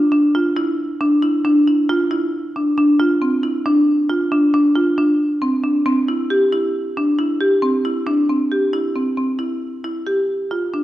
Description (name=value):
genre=contemporary instrumental, contemporary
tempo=136 BPM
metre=5/4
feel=straight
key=unclear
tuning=A4 = 440 Hz
part: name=marimba with medium hard mallets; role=solo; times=0.0-10.8 s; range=C4 to G4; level=-15 LUFS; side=equal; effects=none
room=moderate recital hall reverb, RT60 1.5 s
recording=worn, warbling old tape, cassette tape, warbly pitch drift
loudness=-15 LUFS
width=side -14 dB against mid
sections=0.0-8.1 A section; 8.1-10.8 B section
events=none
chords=none